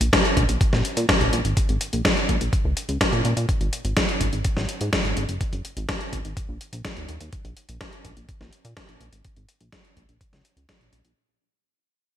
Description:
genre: italo disco.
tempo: 125 BPM.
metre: 4/4.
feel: straight.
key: unclear.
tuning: A4 = 440 Hz.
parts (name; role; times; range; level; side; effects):
chorused synth bass; bass; 0.0-11.1 s; F#1 to A#2; -26 LUFS; equal; none.
dusty soul sampler-style drum kit; drums; 0.0-11.1 s; hi-hat, snare drum; -23 LUFS; equal; gated reverb.
electronic kick drum; drums; 0.1-10.8 s; none; -25 LUFS; equal; none.
room: light reverb.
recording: bright 1980s-style digital production.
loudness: -21 LUFS.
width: side -10 dB against mid.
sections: 0.0-11.2 A section.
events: fade-out 0.0-11.2.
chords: none.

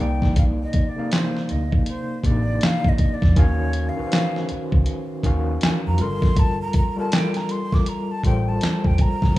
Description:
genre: R&B, neo-soul.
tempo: 80 BPM.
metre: 4/4.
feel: swing 61% on 16ths.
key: unclear.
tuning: A4 = 440 Hz.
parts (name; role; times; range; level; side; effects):
breathy jazz flute; melody; 0.0-9.4 s; C5 to D6; -30 LUFS; equal; tape echo.
overdriven tine electric piano; accompaniment; 0.0-9.4 s; C3 to F5; -25 LUFS; left 1 dB; medium tremolo.
vintage muted fingered electric bass; bass; 0.0-9.3 s; E1 to F2; -22 LUFS; equal; none.
dusty soul sampler-style drum kit; drums; 0.2-9.4 s; handclaps, hi-hat, kick drum, snare drum; -20 LUFS; equal; none.
room: little or no reverb.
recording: rough home demo mix.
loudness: -18 LUFS.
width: side -16 dB against mid.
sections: 0.0-9.4 A section.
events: flute solo 0.0-9.4.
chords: 0.0 Cm9; 3.4 Ebm9; 6.0 Gm9.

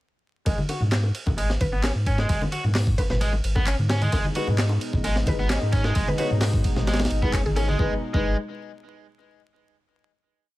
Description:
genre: breakbeat, breaks.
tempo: 131 BPM.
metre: 4/4.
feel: straight.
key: G# minor.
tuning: A4 = 440 Hz.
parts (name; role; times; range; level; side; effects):
biting overdriven guitar; riff; 0.5-8.4 s; G#3 to F#4; -30 LUFS; equal; low-pass filter, ping-pong delay.
saturated sub bass; bass; 0.5-8.4 s; G#1 to G#2; -24 LUFS; equal; none.
breakbeat sampler-style drum kit; drums; 0.5-8.2 s; hi-hat, kick drum, ride cymbal, snare drum; -26 LUFS; equal; none.
bongos and congas; percussion; 0.5-7.8 s; none; -31 LUFS; left 1 dB; none.
electronic handclaps; drums; 0.9-7.4 s; none; -33 LUFS; left 1 dB; none.
mallet-like synth pluck; melody; 1.6-7.6 s; G#4 to B4; -34 LUFS; equal; chorus, old record sound, cassette tape, ping-pong delay.
lush unison pad; sustained chords; 4.1-8.0 s; B2 to D#4; -32 LUFS; equal; chorus, sidechain pumping.
dark concert grand piano; stabs; 4.4-8.3 s; G#3 to C#5; -32 LUFS; left 2 dB; ping-pong delay.
room: little or no reverb.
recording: vinyl crackle.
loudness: -21 LUFS.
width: side -17 dB against mid.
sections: 0.5-7.8 groove; 7.8-9.6 final chord.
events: filter sweep on overdriven electric guitar 0.5-7.8.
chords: 0.5 G#m.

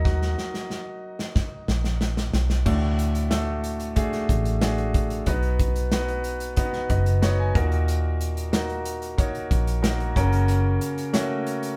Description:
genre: piano-driven pop.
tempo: 92 BPM.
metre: 4/4.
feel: straight.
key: unclear.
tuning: A4 = 442 Hz.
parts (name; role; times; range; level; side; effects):
clear concert grand piano; accompaniment; 0.0-11.8 s; A2 to A#5; -30 LUFS; equal; none.
vintage muted fingered electric bass; bass; 0.0-10.8 s; F#1 to D#2; -26 LUFS; equal; none.
modern studio drum kit; drums; 0.1-11.8 s; crash cymbal, hi-hat, kick drum, snare drum; -29 LUFS; equal; none.
room: moderate studio reverb, RT60 0.8 s.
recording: band playing live in one room.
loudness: -24 LUFS.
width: mono.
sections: 0.0-2.7 A section; 2.7-11.8 B section.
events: grand piano solo 0.0-2.7; drum fill 0.1-2.7; grand piano fill 6.6-7.9.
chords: 0.0 D#m; 2.7 D; 5.3 B; 7.6 D#m; 10.2 F#.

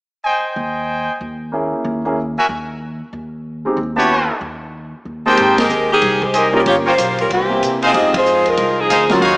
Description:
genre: jazz, big band swing.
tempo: 187 BPM.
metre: 4/4.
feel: swing 62% on 8ths.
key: Ab major.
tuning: A4 = 441 Hz.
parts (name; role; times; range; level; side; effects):
brilliant trumpet section; stabs; 0.2-9.4 s; Eb4 to A5; -18 LUFS; equal; none.
upright bass; bass; 0.6-9.4 s; G1 to C3; -27 LUFS; equal; none.
warm concert grand piano; accompaniment; 1.5-9.2 s; Ab2 to Ab4; -20 LUFS; equal; none.
clear saxophone section; melody; 5.3-9.4 s; Db3 to Eb5; -14 LUFS; equal; none.
vintage drum kit; drums; 5.4-9.3 s; hi-hat, kick drum, ride cymbal, snare drum; -25 LUFS; equal; none.
room: moderate scoring stage reverb, RT60 2.0 s.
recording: small speaker sound.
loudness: -14 LUFS.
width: side -28 dB against mid.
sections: 0.2-5.4 A section; 5.4-9.4 B section.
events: band accent 5.5, 8.1.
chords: 0.2 Abmaj7; 1.5 Gb9 (rootless); 2.8 Eb7b13; 4.1 A9; 5.4 Abmaj7; 6.7 Gm7b5; 7.3 C7; 7.9 Fm7.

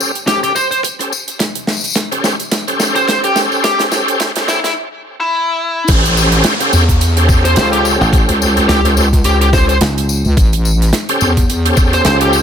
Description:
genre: glitch hop.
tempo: 107 BPM.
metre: 4/4.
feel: swing 57% on 16ths.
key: unclear.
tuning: A4 = 440 Hz.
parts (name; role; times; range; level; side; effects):
bright tonewheel organ; stabs; 0.0-12.4 s; C#4 to B#4; -16 LUFS; equal; overdrive, chorus vibrato, fast rotary speaker, sidechain pumping, low-pass filter, digital delay.
tight metal drum kit; drums; 0.0-12.4 s; crash cymbal, hi-hat, rim click, snare drum, tambourine; -18 LUFS; equal; none.
smooth overdriven lead guitar; melody; 0.3-12.3 s; E4 to B#4; -17 LUFS; left 1 dB; digital delay.
electronic kick drum; drums; 0.3-11.9 s; none; -13 LUFS; equal; high-pass filter on kick.
wobble bass; bass; 5.9-12.0 s; A1 to E2; -13 LUFS; equal; chorus, tube saturation.
downlifter; sound effects; 5.9-10.4 s; none; -22 LUFS; right 1 dB; none.
dry thumbed slap bass; bass; 7.6-12.4 s; A1 to C#2; -15 LUFS; equal; none.
room: light reverb.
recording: high-pass filter.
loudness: -11 LUFS.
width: side -8 dB against mid.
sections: 0.0-5.9 A section; 5.9-12.4 B section.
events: build-up 0.0-5.9; drum fill 0.0-4.8; filter sweep on tonewheel organ 0.0-5.9; break 4.8-5.9; drop 5.9-12.4.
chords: 0.0 A7#9.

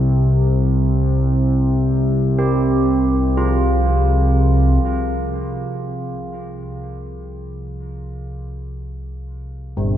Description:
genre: dark ambient drone.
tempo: free time.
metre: none.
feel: none.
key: unclear.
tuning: A4 = 441 Hz.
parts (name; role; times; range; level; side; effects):
analog drone; drone; 0.0-10.0 s; C2 to C3; -17 LUFS; equal; chorus.
carillon bells; arpeggios; 2.4-10.0 s; G2 to G4; -24 LUFS; right 1 dB; tape echo.
room: wet cathedral reverb, RT60 5.2 s.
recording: dark, warm production.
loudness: -15 LUFS.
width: side -11 dB against mid.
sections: 0.0-4.8 A section; 4.8-10.0 B section.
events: none.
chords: 0.0 C5; 4.8 N.C..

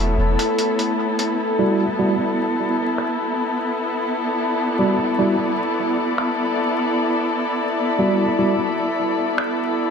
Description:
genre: ambient dub.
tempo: 75 BPM.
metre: 4/4.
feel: straight.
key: unclear.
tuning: A4 = 441 Hz.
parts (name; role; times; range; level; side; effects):
muted chamber string section; sustained chords; 0.0-9.9 s; B3 to D5; -21 LUFS; left 1 dB; none.
drifting glass-harmonics texture; texture; 0.0-9.9 s; A3 to E5; -26 LUFS; left 2 dB; chorus, built-in reverb.
lo-fi sampler-style drum kit; drums; 0.4-9.5 s; finger snaps, hi-hat; -28 LUFS; equal; overdrive, low-pass filter on hats, low-pass filter on snare, low-pass filter on room, dub echo.
tine electric piano; stabs; 1.6-8.5 s; G3 to D5; -23 LUFS; right 2 dB; fast stereo tremolo, low-pass filter, dub echo.
room: wet concert hall reverb, RT60 1.9 s, digital ambience.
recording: vinyl crackle.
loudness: -18 LUFS.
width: side -6 dB against mid.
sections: 0.0-1.4 A section; 1.4-9.9 B section.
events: filter sweep on drum 1.4-9.9; filter sweep on tine electric piano 1.4-9.9.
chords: 0.0 F#m7/E (rootless); 1.4 Em9.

